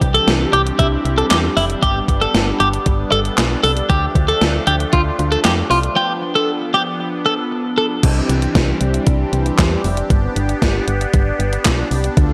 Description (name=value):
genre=synth-pop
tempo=116 BPM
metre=4/4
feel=straight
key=unclear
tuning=A4 = 440 Hz
part: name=phased analog pad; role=sustained chords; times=0.0-12.3 s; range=E3 to A4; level=-24 LUFS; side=equal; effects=phaser, chorus
part: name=solid FM bass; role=bass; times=0.0-12.3 s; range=F1 to F2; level=-22 LUFS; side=equal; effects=none
part: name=gated 80s digital drum machine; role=drums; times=0.0-12.3 s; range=crash cymbal, handclaps, hi-hat, kick drum, snare drum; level=-19 LUFS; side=equal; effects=gated reverb, gated reverb snare, overdrive
part: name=twelve-string electric guitar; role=second line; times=0.1-7.9 s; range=E4 to A4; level=-20 LUFS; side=equal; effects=spring reverb, analog delay
room=little or no reverb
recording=dry, gritty hardware recording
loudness=-17 LUFS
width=mono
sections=0.0-8.0 A section; 8.0-12.3 B section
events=break 6.0-8.0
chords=0.0 Cadd9; 1.8 G; 3.9 Dm; 8.0 Cadd9; 10.1 G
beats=0.28 0.79 1.31 | 1.83 2.35 2.86 3.38 | 3.90 4.41 4.93 5.45 | 5.96 6.48 7.00 7.52 | 8.03 8.55 9.07 9.59 | 10.10 10.62 11.14 11.65 | 12.17